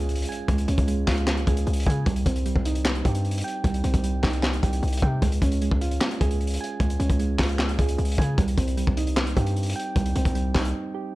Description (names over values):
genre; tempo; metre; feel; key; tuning
hip hop, trap; 152 BPM; 4/4; half-time; C phrygian; A4 = 440 Hz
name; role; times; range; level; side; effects
soft electric-piano-like synth keys; accompaniment; 0.0-11.2 s; G3 to Ab5; -29 LUFS; right 4 dB; chorus, low-pass filter
hard-hitting 808-style bass; bass; 0.0-10.7 s; C2 to Db3; -25 LUFS; equal; none
impact; sound effects; 0.4-0.5 s; none; barely audible; none; none
crunchy breakbeat drum kit; drums; 0.1-10.7 s; handclaps, hi-hat, kick drum, snare drum; -25 LUFS; left 1 dB; none
room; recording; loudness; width
little or no reverb; none; -22 LUFS; side -18 dB against mid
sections
0.0-11.2 A section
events
impact 0.0-0.5; break 10.7-11.2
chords
0.0 Db; 2.1 Cm; 5.2 Db; 8.4 Cm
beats
0.09 | 0.48 0.88 1.27 1.67 | 2.06 2.46 2.85 3.25 | 3.64 4.04 4.43 4.83 | 5.22 5.62 6.01 6.41 | 6.80 7.20 7.59 7.98 | 8.38 8.77 9.17 9.56 | 9.96 10.35 10.75 11.14